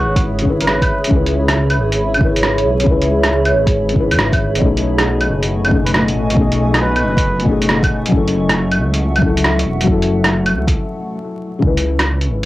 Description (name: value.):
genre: future garage.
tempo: 137 BPM.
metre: 4/4.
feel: swing 67% on 16ths.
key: C# minor.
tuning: A4 = 440 Hz.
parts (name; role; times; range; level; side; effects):
trumpet with cup mute; melody; 0.0-1.0, 5.9-7.4 s; F#4 to B4; -23 LUFS; right 1 dB; cassette tape, analog delay.
felt-muted upright piano; accompaniment; 0.0-12.5 s; B2 to B4; -19 LUFS; left 3 dB; sidechain pumping, low-pass filter, cassette tape, tape echo.
granular cloud pad; sustained chords; 0.0-12.5 s; A3 to C#6; -21 LUFS; right 1 dB; built-in reverb, sidechain pumping, cassette tape.
dark detuned saw bass; bass; 0.0-12.5 s; E1 to F#2; -19 LUFS; equal; sidechain pumping.
electronic kick drum; drums; 0.2-11.7 s; none; -17 LUFS; equal; cassette tape.
lo-fi sampler-style drum kit; drums; 0.2-12.5 s; claves, hi-hat, rim click; -18 LUFS; right 1 dB; cassette tape.
room: moderate booth ambience, RT60 0.2 s.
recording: home recording on cassette, vinyl crackle.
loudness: -13 LUFS.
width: side -16 dB against mid.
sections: 0.0-11.6 A section.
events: break 10.8-11.6.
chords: 0.0 C#m7; 4.6 B13; 8.1 F#m7; 11.6 C#m7.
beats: 0.24 0.68 | 1.11 1.55 1.99 2.43 | 2.87 3.31 3.74 4.18 | 4.62 5.06 5.50 5.93 | 6.37 6.81 7.25 7.68 | 8.12 8.56 9.00 9.44 | 9.88 10.31 10.75 11.19 | 11.63 12.06.